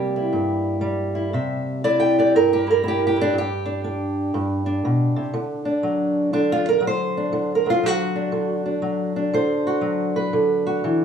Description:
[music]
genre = acoustic country blues, solo or duo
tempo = 120 BPM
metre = 4/4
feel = swing 64% on 8ths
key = unclear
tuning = A4 = 440 Hz
[part]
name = fingerpicked old ladder-braced acoustic guitar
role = solo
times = 0.0-11.0 s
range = G2 to G5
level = -19 LUFS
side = right 1 dB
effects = none
[sound]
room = wet studio reverb, RT60 0.8 s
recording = heard from further back in the room, small room ambience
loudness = -19 LUFS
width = side -7 dB against mid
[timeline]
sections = 0.0-11.0 A section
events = none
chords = 0.0 C7; 3.3 G; 5.3 D7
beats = 0.34 0.83 | 1.33 1.83 2.33 2.83 | 3.33 3.83 4.33 4.83 | 5.33 5.83 6.33 6.83 | 7.33 7.83 8.33 8.83 | 9.33 9.84 10.34 10.84

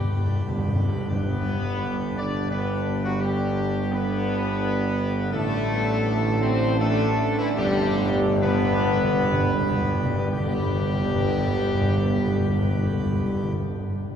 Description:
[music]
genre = classical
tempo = 58-86 BPM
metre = 3/4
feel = straight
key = G major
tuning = A4 = 440 Hz
[part]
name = warm trumpet section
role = melody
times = 0.0-13.5 s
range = E4 to D5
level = -31 LUFS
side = equal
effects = none
[part]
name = mellow French horn section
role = sustained chords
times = 0.0-13.5 s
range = E3 to D4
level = -30 LUFS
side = left 4 dB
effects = none
[part]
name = pipe organ, plenum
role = sustained chords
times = 0.0-13.5 s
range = D3 to G4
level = -31 LUFS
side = equal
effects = none
[part]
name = timpani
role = percussion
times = 0.0-2.1, 7.6-13.5 s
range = G2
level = -27 LUFS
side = equal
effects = none
[part]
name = warm trombone section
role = sustained chords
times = 1.1-13.5 s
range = D3 to D4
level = -32 LUFS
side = right 2 dB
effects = none
[part]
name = mellow tuba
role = bass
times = 1.1-13.5 s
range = G1 to A1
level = -26 LUFS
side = right 1 dB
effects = none
[sound]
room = wet cathedral reverb, RT60 6.5 s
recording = heard from further back in the room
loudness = -21 LUFS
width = side -8 dB against mid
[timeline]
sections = 0.0-1.1 A section; 1.1-10.3 B section; 10.3-14.2 C section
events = timpani fill 0.0-1.1, 7.6-10.3; slowing down 4.3-10.3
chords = 0.0 G; 5.3 Asus4; 7.6 G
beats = 0.34 | 1.10 1.81 2.52 | 3.22 3.92 4.62 | 5.33 6.05 6.80 | 7.58 8.41 9.31 | 10.31 11.28 12.27 | 13.25

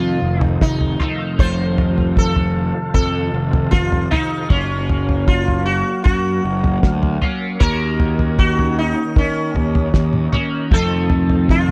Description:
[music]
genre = psychedelic rock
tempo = 77 BPM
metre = 4/4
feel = straight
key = F phrygian dominant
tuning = A4 = 444 Hz
[part]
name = sitar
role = melody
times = 0.0-11.7 s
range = Db4 to C5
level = -25 LUFS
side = equal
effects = slapback echo
[part]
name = tonewheel organ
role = sustained chords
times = 0.0-11.7 s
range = F4 to F5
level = -37 LUFS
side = equal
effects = none
[part]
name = twelve-string electric guitar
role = riff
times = 0.0-11.7 s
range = F2 to Gb4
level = -24 LUFS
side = equal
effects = rotary speaker, double-tracked
[part]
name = fuzz picked electric bass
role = bass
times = 0.0-11.7 s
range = F1 to Eb3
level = -22 LUFS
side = equal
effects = overdrive
[part]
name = cloth-damped thuddy drum kit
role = drums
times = 0.4-11.7 s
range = kick drum, snare drum, toms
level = -20 LUFS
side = equal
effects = none
[sound]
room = little or no reverb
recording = dry, close 1970s-style studio recording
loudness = -18 LUFS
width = mono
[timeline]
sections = 0.0-11.7 A section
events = none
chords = 0.0 F7; 4.5 Gbmaj7; 7.6 Ebm7; 10.7 F7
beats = 0.62 | 1.39 2.17 2.95 3.72 | 4.50 5.28 6.05 6.83 | 7.61 8.39 9.16 9.94 | 10.72 11.50

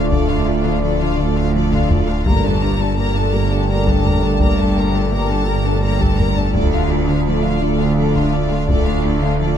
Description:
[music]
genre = cinematic, hybrid orchestral and electronic film score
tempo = 56 BPM (dotted quarters)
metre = 6/8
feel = straight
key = D minor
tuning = A4 = 438 Hz
[part]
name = clear studio violin section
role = melody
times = 0.0-9.6 s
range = D5 to Bb5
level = -26 LUFS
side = left 6 dB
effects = none
[part]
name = warm studio violin section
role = second line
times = 0.0-9.6 s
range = F4 to Bb4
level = -27 LUFS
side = left 7 dB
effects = none
[part]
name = warm symphonic viola section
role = accompaniment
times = 0.0-9.6 s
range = Bb3 to F4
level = -28 LUFS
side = right 2 dB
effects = none
[part]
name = analog drone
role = sustained chords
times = 0.0-9.6 s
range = A3 to D5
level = -26 LUFS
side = right 1 dB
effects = chorus
[part]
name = dark French horn section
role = sustained chords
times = 0.0-9.6 s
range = D4 to A4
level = -28 LUFS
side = left 4 dB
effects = none
[part]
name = mellow trombone section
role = sustained chords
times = 0.0-9.6 s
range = Bb2 to A3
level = -27 LUFS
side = right 4 dB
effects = none
[part]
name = soft round pluck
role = arpeggios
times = 0.0-9.5 s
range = D3 to D4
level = -26 LUFS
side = left 5 dB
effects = chorus
[part]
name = pure sine sub bass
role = bass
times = 0.0-9.6 s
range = D1 to G1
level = -23 LUFS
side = equal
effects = none
[part]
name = rich symphonic cello section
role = bass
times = 0.1-9.6 s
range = D2 to G2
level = -22 LUFS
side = right 4 dB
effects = none
[part]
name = rich symphonic double bass section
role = bass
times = 0.1-9.6 s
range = G1 to D2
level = -22 LUFS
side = right 3 dB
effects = none
[part]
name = taiko ensemble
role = drums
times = 0.1-9.4 s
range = none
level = -20 LUFS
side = equal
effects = none
[sound]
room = moderate scoring stage reverb, RT60 1.9 s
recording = none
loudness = -14 LUFS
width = side -9 dB against mid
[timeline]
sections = 0.0-9.6 A section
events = none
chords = 0.0 Dm; 2.3 Gmadd9; 6.5 Dm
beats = | 0.11 1.18 | 2.26 3.33 | 4.40 5.47 | 6.54 7.61 | 8.68

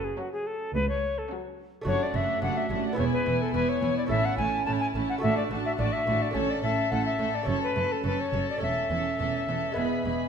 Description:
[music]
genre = classical, baroque-style concerto movement with solo episodes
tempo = 106 BPM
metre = 4/4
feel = straight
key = A major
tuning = A4 = 440 Hz
[part]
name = mellow alto recorder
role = melody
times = 0.0-10.3 s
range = F#4 to A5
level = -29 LUFS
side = left 2 dB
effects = none
[part]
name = lute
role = accompaniment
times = 0.0-10.3 s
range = E2 to B4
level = -36 LUFS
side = right 2 dB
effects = none
[part]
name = dark chamber cello section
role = bass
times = 0.0-10.1 s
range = C#2 to A2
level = -34 LUFS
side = right 3 dB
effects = none
[part]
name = rich chamber double bass section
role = bass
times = 0.0-10.1 s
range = E1 to C#2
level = -33 LUFS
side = right 3 dB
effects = none
[part]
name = dark studio violin section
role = melody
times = 0.2-10.3 s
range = F#5 to B5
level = -40 LUFS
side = left 2 dB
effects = none
[part]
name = warm chamber violin section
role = second line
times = 0.2-10.3 s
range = C#4 to A4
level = -36 LUFS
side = left 6 dB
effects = none
[part]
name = dark chamber viola section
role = accompaniment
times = 0.2-10.3 s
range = F#3 to D4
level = -32 LUFS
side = right 3 dB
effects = none
[sound]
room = wet recital hall reverb, RT60 1.5 s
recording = none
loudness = -25 LUFS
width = side -7 dB against mid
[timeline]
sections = 0.0-10.3 A section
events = none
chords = 0.0 F#m; 1.9 D/F#; 3.0 E; 4.1 A; 5.2 D/A; 6.3 A; 7.5 F#m; 8.6 A/E; 9.8 E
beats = 0.17 0.74 1.30 | 1.87 2.43 2.98 3.54 | 4.10 4.67 5.23 5.79 | 6.35 6.91 7.47 8.04 | 8.62 9.19 9.77

